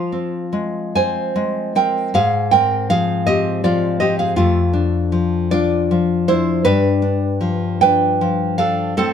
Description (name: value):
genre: romantic piece for solo classical guitar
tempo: 79 BPM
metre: 3/4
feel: uneven beats, rubato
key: unclear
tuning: A4 = 440 Hz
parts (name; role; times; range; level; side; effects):
- nylon-string guitar; solo; 0.0-9.1 s; F2 to Ab5; -15 LUFS; equal; none
room: light reverb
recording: band playing live in one room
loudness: -15 LUFS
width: side -8 dB against mid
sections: 0.0-9.1 A section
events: none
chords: 0.0 Fm; 2.1 Fm/Ab; 4.4 Dm/F; 6.7 G7